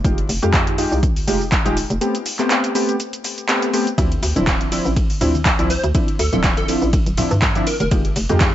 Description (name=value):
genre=deep house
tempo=122 BPM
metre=4/4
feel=swing 55% on 16ths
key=D minor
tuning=A4 = 445 Hz
part: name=warm analog keys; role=stabs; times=0.0-8.5 s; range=F3 to G4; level=-21 LUFS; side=equal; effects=chorus, sidechain pumping, low-pass filter, ping-pong delay
part: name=hollow knocking FM bass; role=bass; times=0.0-8.5 s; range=D1 to G2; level=-22 LUFS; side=equal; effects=sidechain pumping
part: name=deep house drum kit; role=drums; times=0.0-8.5 s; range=handclaps, hi-hat, shaker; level=-22 LUFS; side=equal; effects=overdrive
part: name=electronic kick drum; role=drums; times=0.0-8.5 s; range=none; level=-19 LUFS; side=equal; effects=overdrive
part: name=breakbeat sampler-style drum kit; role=drums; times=4.0-8.5 s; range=ride cymbal, snare drum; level=-34 LUFS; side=right 3 dB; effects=high-pass filter on cymbals, high-pass filter on snare
part: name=congas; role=percussion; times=4.4-8.4 s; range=none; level=-27 LUFS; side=left 1 dB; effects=none
part: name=plucky unison lead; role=melody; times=5.7-7.9 s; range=A4 to C5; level=-25 LUFS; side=equal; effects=ensemble chorus, digital delay
room=digital ambience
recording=vinyl crackle, nothing above 7.8 kHz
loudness=-16 LUFS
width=side -12 dB against mid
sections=0.0-8.5 A section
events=none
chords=0.0 Fm9; 2.0 Am9; 4.0 Dm9; 7.7 Fm9